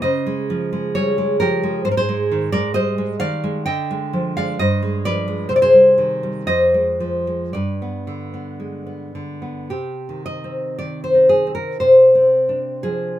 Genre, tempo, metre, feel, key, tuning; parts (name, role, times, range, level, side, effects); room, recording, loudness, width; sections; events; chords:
romantic piece for solo classical guitar; 54-68 BPM; 2/4; rubato; C minor; A4 = 440 Hz
nylon-string guitar; solo; 0.0-13.2 s; F2 to G5; -16 LUFS; equal
little or no reverb; minimal, uncompressed stereo recording; -15 LUFS; side -12 dB against mid
0.0-9.7 A section; 9.7-13.2 B section
0.0 Db; 1.9 Ab; 3.7 Ddim; 4.6 G7b9; 5.5 Cm; 6.5 Fm; 7.5 G; 9.7 Cm; 11.8 Dm7b5/C